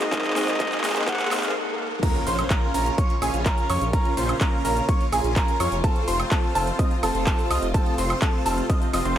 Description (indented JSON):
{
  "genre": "EDM, festival progressive house",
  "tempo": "126 BPM",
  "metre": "4/4",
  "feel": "straight",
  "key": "Bb minor",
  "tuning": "A4 = 439 Hz",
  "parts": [
    { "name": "trumpet with plunger mute", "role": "melody", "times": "0.0-1.6 s", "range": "Eb5 to Gb5", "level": "-31 LUFS", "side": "equal", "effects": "tape echo" },
    { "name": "felt-muted upright piano", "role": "accompaniment", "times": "0.0-2.1 s", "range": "Ab2 to Ab4", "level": "-32 LUFS", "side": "left 2 dB", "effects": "sidechain pumping, tape echo" },
    { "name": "rich chamber string section", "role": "sustained chords", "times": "0.0-9.2 s", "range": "C3 to Gb4", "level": "-34 LUFS", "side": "left 1 dB", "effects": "sidechain pumping" },
    { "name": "big supersaw lead", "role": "riff", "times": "0.0-9.2 s", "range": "Bb3 to Eb5", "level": "-27 LUFS", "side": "right 1 dB", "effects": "phaser, sidechain pumping, tape echo" },
    { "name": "big-room dance drum kit", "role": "drums", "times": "0.0-9.2 s", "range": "crash cymbal, handclaps, hi-hat, shaker, woodblock", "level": "-29 LUFS", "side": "right 1 dB", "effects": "overdrive" },
    { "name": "riser, swell and impact", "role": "sound effects", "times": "0.7-3.9 s", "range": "none", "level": "-35 LUFS", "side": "equal", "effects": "none" },
    { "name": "electronic kick drum", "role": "drums", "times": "0.1-8.8 s", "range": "none", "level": "-23 LUFS", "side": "equal", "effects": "overdrive" },
    { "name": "clear grand piano", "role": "arpeggios", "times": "2.0-9.2 s", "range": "Ab5 to Eb6", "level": "-28 LUFS", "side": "right 1 dB", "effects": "sidechain pumping, tape echo" },
    { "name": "wide detuned saw bass", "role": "bass", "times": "2.3-9.2 s", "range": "F1 to F2", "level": "-27 LUFS", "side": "equal", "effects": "chorus, sidechain pumping" }
  ],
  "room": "light reverb, small room ambience",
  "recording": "high-pass filter",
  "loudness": "-20 LUFS",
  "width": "side -11 dB against mid",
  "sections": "0.0-2.0 A section; 2.0-9.2 B section",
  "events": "build-up 0.0-2.0; drum fill 0.0-1.6; swell 1.1-2.0; stop 1.6-2.0; drop 2.0-9.2; impact 2.0-3.9",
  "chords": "0.0 Ebm; 2.0 Bbm; 5.8 F",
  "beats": "| 0.12 0.60 1.08 1.55 | 2.03 2.50 2.98 3.46 | 3.93 4.41 4.89 5.36 | 5.84 6.32 6.79 7.27 | 7.74 8.22 8.70 9.17"
}